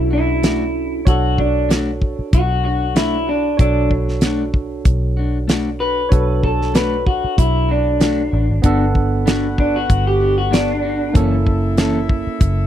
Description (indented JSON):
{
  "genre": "straight-eighth soul blues",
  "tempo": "95 BPM",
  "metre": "4/4",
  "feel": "swing 56% on 16ths",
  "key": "B minor",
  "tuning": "A4 = 440 Hz",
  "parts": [
    { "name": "electric guitar through a small old amp", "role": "melody", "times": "0.0-11.1 s", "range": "D4 to B4", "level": "-19 LUFS", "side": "equal", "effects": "spring reverb" },
    { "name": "barky tine electric piano", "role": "accompaniment", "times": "0.0-12.7 s", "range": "A#3 to F#5", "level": "-24 LUFS", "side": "right 5 dB", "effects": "wide subtle chorus" },
    { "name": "vintage muted fingered electric bass", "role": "bass", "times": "0.0-12.7 s", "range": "F#1 to B1", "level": "-20 LUFS", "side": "equal", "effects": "none" },
    { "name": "clean electric guitar", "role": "stabs", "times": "0.1-12.0 s", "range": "E3 to A4", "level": "-23 LUFS", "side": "left 4 dB", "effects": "none" },
    { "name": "damped 70s drum kit", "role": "drums", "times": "0.4-12.6 s", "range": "hi-hat, kick drum, snare drum", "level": "-15 LUFS", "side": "equal", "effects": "none" },
    { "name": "clear horn section", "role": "sustained chords", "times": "8.6-12.7 s", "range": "E4 to F#5", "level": "-30 LUFS", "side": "left 4 dB", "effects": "none" }
  ],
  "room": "little or no reverb",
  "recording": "dry, close 1970s-style studio recording",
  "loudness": "-15 LUFS",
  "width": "side -11 dB against mid",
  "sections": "0.0-12.7 A section",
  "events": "clean electric guitar solo 0.0-12.7",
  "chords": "0.0 Bm7; 8.6 Gmaj7; 11.2 F#7#9"
}